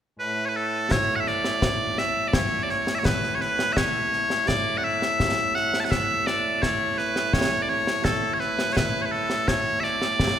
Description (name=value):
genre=scottish traditional, Scottish pipe music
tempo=84 BPM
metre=3/4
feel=straight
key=A major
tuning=A4 = 440 Hz
part: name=loud bright bagpipes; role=melody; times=0.2-10.4 s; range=A2 to A5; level=-23 LUFS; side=equal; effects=none
part: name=concert snare drum and concert bass drum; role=drums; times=0.9-10.4 s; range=none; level=-26 LUFS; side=left 1 dB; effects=none
room=wet church reverb, RT60 2.8 s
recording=recorded in a church or concert hall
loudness=-22 LUFS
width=side -9 dB against mid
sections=0.9-10.4 A section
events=none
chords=none